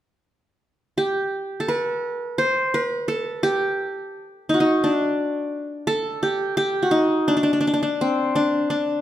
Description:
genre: turkish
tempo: 171 BPM (eighths)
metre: 7/8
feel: straight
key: D makam hicaz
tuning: A4 = 441 Hz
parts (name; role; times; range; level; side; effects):
- qanun; melody; 1.0-9.0 s; C4 to C5; -20 LUFS; equal; none
room: moderate recital hall reverb, RT60 1.4 s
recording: minimal, uncompressed stereo recording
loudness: -20 LUFS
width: side -12 dB against mid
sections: 1.0-5.9 A section; 5.9-9.0 B section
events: none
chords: none

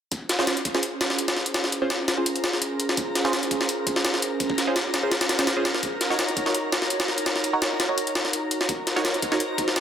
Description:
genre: drum and bass, jungle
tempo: 168 BPM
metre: 4/4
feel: swing 53% on 16ths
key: unclear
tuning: A4 = 440 Hz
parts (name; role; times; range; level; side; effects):
- warbly tape-like pad; sustained chords; 0.1-9.8 s; Db4 to Db5; -30 LUFS; right 2 dB; chorus, built-in reverb
- jungle sampler-style drum kit; drums; 0.1-9.8 s; hi-hat, kick drum, snare drum; -24 LUFS; left 1 dB; high-pass filter on kick, small room ambience, high-pass filter on hats, high-pass filter on snare
- backwards swelling texture; texture; 1.3-9.8 s; Bb4 to Bb5; -34 LUFS; left 1 dB; built-in reverb
- band-passed chord stab; stabs; 0.4-9.4 s; Db4 to Db5; -28 LUFS; right 2 dB; phaser, cassette tape, dub echo
room: moderate plate reverb, RT60 2.0 s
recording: dense, heavily limited modern master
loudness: -22 LUFS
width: side -8 dB against mid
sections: 0.1-9.8 A section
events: filter sweep on ambient pad 0.1-9.8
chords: 0.1 Dbmaj7; 5.8 Ebm7

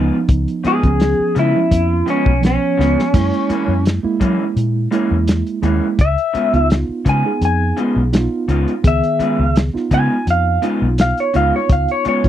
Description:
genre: straight-eighth soul blues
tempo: 84 BPM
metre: 4/4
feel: swing 53% on 16ths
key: Db mixolydian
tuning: A4 = 440 Hz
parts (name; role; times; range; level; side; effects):
- mellow reed electric piano; accompaniment; 0.0-12.3 s; Eb3 to Ab4; -21 LUFS; right 5 dB; fast tremolo
- electric guitar through a small old amp; stabs; 0.0-12.3 s; Gb2 to F4; -20 LUFS; left 2 dB; none
- vintage muted fingered electric bass; bass; 0.0-12.3 s; Cb2 to Gb3; -18 LUFS; left 1 dB; none
- warm soul drum kit; drums; 0.3-12.3 s; crash cymbal, hi-hat, kick drum, snare drum; -16 LUFS; left 1 dB; none
- electric guitar through a small old amp; melody; 0.7-12.3 s; Db4 to Ab5; -18 LUFS; left 1 dB; phaser
room: little or no reverb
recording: dry, close 1970s-style studio recording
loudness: -14 LUFS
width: side -11 dB against mid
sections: 0.0-12.3 A section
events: clean electric guitar solo 0.0-12.3; drum fill 2.8-3.1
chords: 0.0 Db7; 3.1 Gb7; 6.0 Db7

